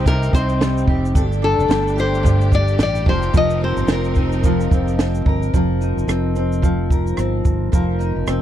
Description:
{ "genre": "acoustic pop", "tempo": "110 BPM", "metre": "4/4", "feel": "swing 60% on 16ths", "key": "unclear", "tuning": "A4 = 440 Hz", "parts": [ { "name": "nylon-string guitar", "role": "melody", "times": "0.0-5.0 s", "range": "A4 to Eb5", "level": "-22 LUFS", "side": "left 4 dB", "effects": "none" }, { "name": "fingerpicked steel-string acoustic guitar", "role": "accompaniment", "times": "0.0-8.4 s", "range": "G2 to Bb4", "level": "-21 LUFS", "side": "equal", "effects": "double-tracked left and right" }, { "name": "clear studio string section", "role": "sustained chords", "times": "0.0-5.5 s", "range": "F3 to Bb4", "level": "-30 LUFS", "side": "right 2 dB", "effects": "none" }, { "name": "fingered electric bass", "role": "bass", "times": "0.0-8.4 s", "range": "F1 to C2", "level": "-21 LUFS", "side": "equal", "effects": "none" }, { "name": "compact cocktail drum kit", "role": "drums", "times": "0.1-8.4 s", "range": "kick drum, rim click, shaker, snare drum", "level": "-18 LUFS", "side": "equal", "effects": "none" } ], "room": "little or no reverb", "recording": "dry, close 1970s-style studio recording", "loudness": "-15 LUFS", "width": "side -11 dB against mid", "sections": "0.0-5.5 A section; 5.5-8.4 B section", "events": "none", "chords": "0.0 Cm; 1.2 Gsus2; 3.1 F7sus4", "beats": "0.06 0.60 | 1.15 1.70 2.25 2.80 | 3.35 3.89 4.44 4.99 | 5.54 6.08 6.63 7.18 | 7.73 8.28" }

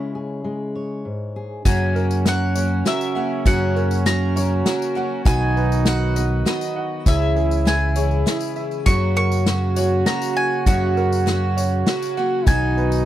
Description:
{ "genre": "indie folk with a building arrangement", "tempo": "100 BPM", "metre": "3/4", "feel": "straight", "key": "F# mixolydian", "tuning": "A4 = 442 Hz", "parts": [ { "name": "fingerpicked steel-string acoustic guitar", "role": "accompaniment", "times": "0.0-1.6 s", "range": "G#2 to C#5", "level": "-26 LUFS", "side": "left 2 dB", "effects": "none" }, { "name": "warm trombone", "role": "second line", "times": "1.6-13.1 s", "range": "C#4 to F#4", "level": "-26 LUFS", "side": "right 9 dB", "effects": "none" }, { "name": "dark brass ensemble", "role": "sustained chords", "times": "1.6-13.1 s", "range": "C#3 to F#4", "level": "-31 LUFS", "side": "left 2 dB", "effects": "none" }, { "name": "bowl-back mandolin", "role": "melody", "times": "1.7-13.1 s", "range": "D#5 to C#6", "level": "-26 LUFS", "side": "equal", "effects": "none" }, { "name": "picked twelve-string acoustic guitar", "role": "accompaniment", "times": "1.7-13.1 s", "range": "F#2 to B4", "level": "-27 LUFS", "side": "left 7 dB", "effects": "none" }, { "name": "warm upright piano", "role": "arpeggios", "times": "1.7-13.1 s", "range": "E4 to F#5", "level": "-27 LUFS", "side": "right 6 dB", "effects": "none" }, { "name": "picked electric bass", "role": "bass", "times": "1.7-13.1 s", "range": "B1 to F#2", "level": "-20 LUFS", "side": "equal", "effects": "none" }, { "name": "unplugged drum kit", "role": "drums", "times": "1.7-12.6 s", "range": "hi-hat, kick drum, snare drum", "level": "-18 LUFS", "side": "equal", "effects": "none" }, { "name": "tambourine", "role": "percussion", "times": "1.7-13.1 s", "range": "none", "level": "-36 LUFS", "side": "left 9 dB", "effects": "none" } ], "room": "little or no reverb", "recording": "dry, close 1970s-style studio recording", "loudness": "-18 LUFS", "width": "side -12 dB against mid", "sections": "0.0-1.7 A section; 1.7-13.1 B section", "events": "none", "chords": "0.0 C#m; 1.7 F#; 5.3 B; 7.1 C#m; 8.9 F#; 12.5 B", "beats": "0.45 1.05 | 1.65 2.26 2.86 | 3.46 4.06 4.66 | 5.26 5.86 6.46 | 7.06 7.66 8.26 | 8.87 9.46 10.07 | 10.67 11.27 11.87 | 12.47" }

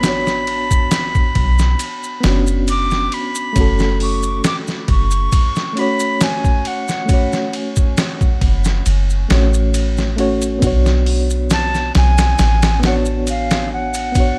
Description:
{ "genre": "trip hop", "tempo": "68 BPM", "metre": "4/4", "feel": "swing 54% on 16ths", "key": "F# minor", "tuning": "A4 = 440 Hz", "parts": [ { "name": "reedy silver concert flute", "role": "melody", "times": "0.0-14.4 s", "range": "E#5 to D6", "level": "-24 LUFS", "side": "equal", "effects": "tape echo" }, { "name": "mellow reed electric piano", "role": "accompaniment", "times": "0.0-14.4 s", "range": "A3 to C#5", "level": "-24 LUFS", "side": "equal", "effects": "medium tremolo" }, { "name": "soft 808-style bass", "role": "bass", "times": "0.0-14.4 s", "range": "F#1 to B1", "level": "-19 LUFS", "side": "equal", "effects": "none" }, { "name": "trip hop sampler-style drum kit", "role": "drums", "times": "0.0-14.4 s", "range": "hi-hat, kick drum, ride cymbal, snare drum", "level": "-21 LUFS", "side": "equal", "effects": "none" }, { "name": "maracas", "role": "percussion", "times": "0.0-14.3 s", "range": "none", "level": "-31 LUFS", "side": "equal", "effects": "none" } ], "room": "digital ambience", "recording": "none", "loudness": "-16 LUFS", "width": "mono", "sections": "0.0-14.4 A section", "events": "none", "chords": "0.0 Bmadd9; 3.6 F#m; 10.6 Bmadd9", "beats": "| 0.03 0.92 1.80 2.68 | 3.56 4.44 5.33 6.21 | 7.09 7.97 8.86 9.74 | 10.62 11.50 12.38 13.27 | 14.15" }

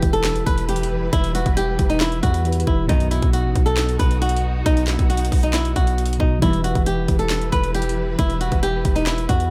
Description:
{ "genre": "hip hop, trap", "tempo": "136 BPM", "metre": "4/4", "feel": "half-time", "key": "E harmonic minor", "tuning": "A4 = 440 Hz", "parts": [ { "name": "flamenco guitar", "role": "melody", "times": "0.0-9.5 s", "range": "D#4 to B4", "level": "-26 LUFS", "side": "equal", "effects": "none" }, { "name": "mellow tine electric piano", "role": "accompaniment", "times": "0.0-9.5 s", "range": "B2 to B4", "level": "-30 LUFS", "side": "equal", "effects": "none" }, { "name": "dark symphonic string section", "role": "sustained chords", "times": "0.0-9.5 s", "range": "E3 to B4", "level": "-34 LUFS", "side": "equal", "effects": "none" }, { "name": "hard-hitting 808-style bass", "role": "bass", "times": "0.0-9.5 s", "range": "E1 to E2", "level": "-25 LUFS", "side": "equal", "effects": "none" }, { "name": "trap drum kit", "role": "drums", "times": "0.0-9.5 s", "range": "handclaps, hi-hat, kick drum, snare drum", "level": "-24 LUFS", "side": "equal", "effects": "none" }, { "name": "impact", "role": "sound effects", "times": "0.0-1.1 s", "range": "none", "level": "barely audible", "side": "none", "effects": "none" }, { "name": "dark studio string section", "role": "stabs", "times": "2.9-3.1, 6.4-6.6 s", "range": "F#2 to E3", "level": "-28 LUFS", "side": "equal", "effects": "digital delay" } ], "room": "digital ambience", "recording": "none", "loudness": "-20 LUFS", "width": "mono", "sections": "0.0-9.5 A section", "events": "impact 0.0-1.1", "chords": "0.0 Em; 2.9 B; 6.4 Em", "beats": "0.24 0.69 | 1.13 1.57 2.01 2.45 | 2.89 3.33 3.77 4.22 | 4.66 5.10 5.54 5.98 | 6.42 6.86 7.30 7.75 | 8.19 8.63 9.07" }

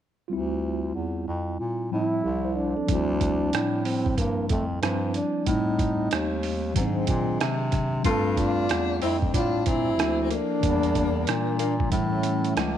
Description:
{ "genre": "hip hop, jazz-hop", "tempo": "93 BPM", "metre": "4/4", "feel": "swing 62% on 16ths", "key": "D minor", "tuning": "A4 = 440 Hz", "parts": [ { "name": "mellow tine electric piano", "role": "accompaniment", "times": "0.3-12.8 s", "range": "D#3 to C5", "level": "-29 LUFS", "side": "left 1 dB", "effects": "medium stereo tremolo" }, { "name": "clear bass clarinet", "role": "bass", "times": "0.3-12.8 s", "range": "C2 to B#2", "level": "-28 LUFS", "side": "equal", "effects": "none" }, { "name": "breathy trombone", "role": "melody", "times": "1.9-12.8 s", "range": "A3 to A4", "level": "-28 LUFS", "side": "right 2 dB", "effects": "none" }, { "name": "trip hop sampler-style drum kit", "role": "drums", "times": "2.9-12.8 s", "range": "hi-hat, kick drum, rim click", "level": "-29 LUFS", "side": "right 2 dB", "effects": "none" }, { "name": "breathy tenor saxophone", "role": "second line", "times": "6.7-12.8 s", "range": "G#3 to F4", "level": "-31 LUFS", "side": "left 11 dB", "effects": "none" } ], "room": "light reverb, small room ambience", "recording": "1960s-style stereo", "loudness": "-23 LUFS", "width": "side -10 dB against mid", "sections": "0.3-2.9 A section; 2.9-12.8 B section", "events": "none", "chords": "0.3 Dm11; 5.5 Am7b5; 6.8 G#7#11; 8.0 Gm11; 10.6 Em7b5; 11.9 A7", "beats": "| 0.31 0.95 1.60 2.24 | 2.89 3.53 4.18 4.82 | 5.47 6.11 6.76 7.40 | 8.05 8.69 9.34 9.98 | 10.63 11.27 11.92 12.56" }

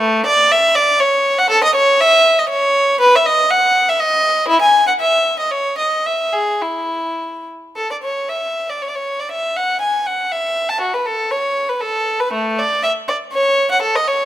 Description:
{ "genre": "classical, baroque-style suite movement for unaccompanied violin", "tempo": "101-123 BPM", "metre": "3/4", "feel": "rubato", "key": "E major, A major from 7.8 s", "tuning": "A4 = 440 Hz", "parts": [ { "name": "warm violin", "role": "solo", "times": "0.0-14.3 s", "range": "A3 to A5", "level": "-14 LUFS", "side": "equal", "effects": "none" } ], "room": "moderate recital hall reverb, RT60 1.8 s", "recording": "close, detailed microphones", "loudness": "-13 LUFS", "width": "side -12 dB against mid", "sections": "0.0-7.8 A section; 7.8-14.3 A section", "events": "none", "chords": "none", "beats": "| 0.00 0.51 1.01 | 1.50 1.99 2.48 | 3.00 3.52 4.01 | 4.51 5.02 5.53 | 6.07 6.62 7.18 | 7.76 8.29 8.80 | 9.31 9.81 10.31 | 10.81 11.31 11.81 | 12.33 12.84 13.33 | 13.83" }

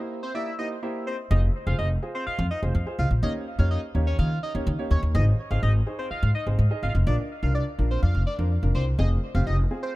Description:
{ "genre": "dance-pop", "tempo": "125 BPM", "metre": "4/4", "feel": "straight", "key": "unclear", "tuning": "A4 = 439 Hz", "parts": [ { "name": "dark baby grand piano", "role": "accompaniment", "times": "0.0-10.0 s", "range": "Bb3 to Eb5", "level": "-34 LUFS", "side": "right 1 dB", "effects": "dub echo" }, { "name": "fat analog lead", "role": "melody", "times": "0.2-9.9 s", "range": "C5 to F5", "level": "-32 LUFS", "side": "equal", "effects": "chorus, dub echo" }, { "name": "upright bass", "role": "bass", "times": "1.3-9.6 s", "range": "F1 to Eb3", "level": "-22 LUFS", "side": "equal", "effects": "none" } ], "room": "small room ambience", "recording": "echo-heavy mix", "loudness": "-22 LUFS", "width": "side -18 dB against mid", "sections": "0.0-1.3 A section; 1.3-10.0 B section", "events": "break 0.0-1.3", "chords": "0.0 C7; 1.3 Fm; 3.2 Eb7; 5.1 Ab; 7.1 Bb; 9.0 Fm", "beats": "0.35 0.83 | 1.31 1.79 2.27 2.75 | 3.23 3.71 4.19 4.67 | 5.15 5.63 6.11 6.59 | 7.07 7.55 8.03 8.51 | 8.99 9.47 9.95" }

